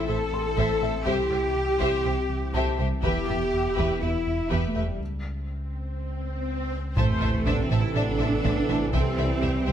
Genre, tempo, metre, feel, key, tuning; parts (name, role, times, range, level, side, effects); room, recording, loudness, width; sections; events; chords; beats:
cinematic, hybrid orchestral and electronic film score; 122 BPM; 4/4; straight; A minor; A4 = 439 Hz
dark symphonic violin section; melody; 0.0-9.7 s; E5 to A5; -36 LUFS; left 3 dB
warm symphonic violin section; second line; 0.0-9.7 s; B4 to E5; -35 LUFS; left 4 dB
warm studio viola section; accompaniment; 0.0-9.7 s; G4 to C5; -33 LUFS; right 1 dB
chorused pulse-width pad; sustained chords; 0.0-9.7 s; C3 to E5; -35 LUFS; equal
dark French horn section; sustained chords; 0.0-9.7 s; E3 to A4; -30 LUFS; left 3 dB
rich symphonic cello section; bass; 0.0-9.7 s; G3 to A4; -30 LUFS; right 2 dB
sub bass with octave; bass; 0.0-9.7 s; E1 to C#2; -32 LUFS; equal
felt-muted upright piano; texture; 0.0-9.7 s; E4 to C6; -39 LUFS; left 5 dB; ping-pong delay
smooth gliding synth bass; riff; 0.1-9.7 s; C2 to A2; -31 LUFS; right 2 dB
rich symphonic double bass section; bass; 0.1-9.7 s; A1 to E2; -32 LUFS; right 4 dB
taiko ensemble; drums; 0.6-9.7 s; -33 LUFS; left 1 dB
swell and sub drop; sound effects; 5.8-8.9 s; -34 LUFS; left 1 dB
warm trombone section; sustained chords; 7.0-9.7 s; C3 to G3; -34 LUFS; right 5 dB
light reverb; close, detailed microphones; -23 LUFS; side -9 dB against mid
0.0-7.0 A section; 7.0-9.7 B section
break 5.0-7.0; swell 5.8-7.0; drum fill 6.2-7.0; impact 7.0-8.9
0.0 Am; 1.1 C; 3.0 Em; 5.0 N.C.; 7.0 Am; 8.9 C
0.08 0.57 | 1.07 1.56 2.05 2.54 | 3.03 3.52 4.02 4.51 | 5.00 5.49 5.98 6.47 | 6.97 7.46 7.95 8.44 | 8.93 9.43